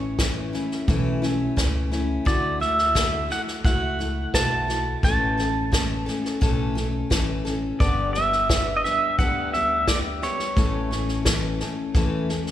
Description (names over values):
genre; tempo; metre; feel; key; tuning
honky-tonk and classic country; 87 BPM; 4/4; straight; unclear; A4 = 440 Hz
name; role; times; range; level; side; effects
pedal steel guitar; melody; 0.0-11.6 s; C#5 to A5; -24 LUFS; right 1 dB; none
picked steel-string acoustic guitar; accompaniment; 0.0-12.5 s; G2 to A4; -27 LUFS; left 3 dB; none
upright bass; bass; 0.0-12.5 s; G1 to E2; -29 LUFS; equal; none
unplugged drum kit; drums; 0.2-12.5 s; hi-hat, kick drum, snare drum; -24 LUFS; equal; none
room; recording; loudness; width
moderate concert hall reverb, RT60 2.2 s; recorded in a church or concert hall; -21 LUFS; side -12 dB against mid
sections
0.0-12.5 A section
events
none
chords
0.0 A; 2.3 Dadd9; 5.0 A; 7.8 G; 10.6 A